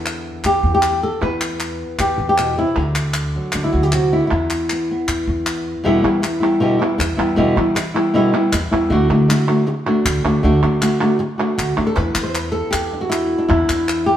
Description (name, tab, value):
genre	flamenco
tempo	157 BPM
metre	4/4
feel	straight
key	E minor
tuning	A4 = 440 Hz
part	flamenco guitar	melody	0.0-14.2 s	E2 to C5	-17 LUFS	equal	none
part	upright bass	bass	0.0-14.1 s	D2 to E3	-22 LUFS	equal	none
part	palmas hand claps	percussion	0.1-14.1 s	none	-25 LUFS	equal	none
room	wet stone room reverb, RT60 1.2 s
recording	band playing live in one room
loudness	-15 LUFS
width	side -10 dB against mid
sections	0.0-5.8 A section; 5.8-12.0 B section; 12.0-14.2 C section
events	none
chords	0.0 E5; 2.8 D; 4.3 E5; 8.9 D; 12.0 E7(no3)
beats	0.06 0.45 0.83 | 1.22 1.61 1.99 2.38 | 2.77 3.15 3.54 3.92 | 4.31 4.70 5.08 5.46 | 5.85 6.23 6.62 7.00 | 7.38 7.77 8.15 8.53 | 8.91 9.29 9.68 10.06 | 10.44 10.82 11.21 11.59 | 11.97 12.35 12.73 13.12 | 13.50 13.88